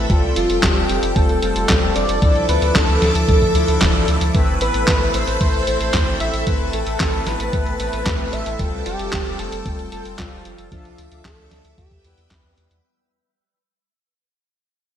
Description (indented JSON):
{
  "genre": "italo disco",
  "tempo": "113 BPM",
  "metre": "4/4",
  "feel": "straight",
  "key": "A minor",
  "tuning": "A4 = 440 Hz",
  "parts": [
    { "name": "phased string machine", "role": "sustained chords", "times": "0.0-12.8 s", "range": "A4 to E6", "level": "-27 LUFS", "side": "equal", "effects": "ensemble chorus, phaser" },
    { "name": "analog synth brass", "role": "stabs", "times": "0.0-12.8 s", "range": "F3 to E5", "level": "-25 LUFS", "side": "left 2 dB", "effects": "chorus, cassette tape" },
    { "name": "round analog bass", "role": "bass", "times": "0.0-12.8 s", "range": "D1 to E2", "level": "-23 LUFS", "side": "equal", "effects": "none" },
    { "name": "dusty soul sampler-style drum kit", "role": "drums", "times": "0.1-12.8 s", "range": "handclaps, hi-hat, snare drum", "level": "-23 LUFS", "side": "right 1 dB", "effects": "gated reverb" },
    { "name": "electronic kick drum", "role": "drums", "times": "0.1-12.4 s", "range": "none", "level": "-19 LUFS", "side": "equal", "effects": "none" },
    { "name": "wide unison lead", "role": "melody", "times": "0.4-12.5 s", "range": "F4 to E5", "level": "-23 LUFS", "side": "equal", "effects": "ping-pong delay" }
  ],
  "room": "moderate lush hall reverb, RT60 1.9 s, digital ambience",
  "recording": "bright 1980s-style digital production",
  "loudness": "-16 LUFS",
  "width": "side -9 dB against mid",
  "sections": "0.0-12.8 A section",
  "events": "fade-out 4.3-12.8",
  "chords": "0.1 Fadd9; 2.2 Dmadd9; 4.3 Amadd9; 8.6 Fadd9; 10.7 Dmadd9; 11.8 Em",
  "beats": "| 0.10 0.63 1.16 1.69 | 2.22 2.75 3.28 3.81 | 4.35 4.88 5.41 5.94 | 6.47 7.00 7.53 8.06 | 8.59 9.12 9.66 10.19 | 10.72 11.25 11.78 12.31"
}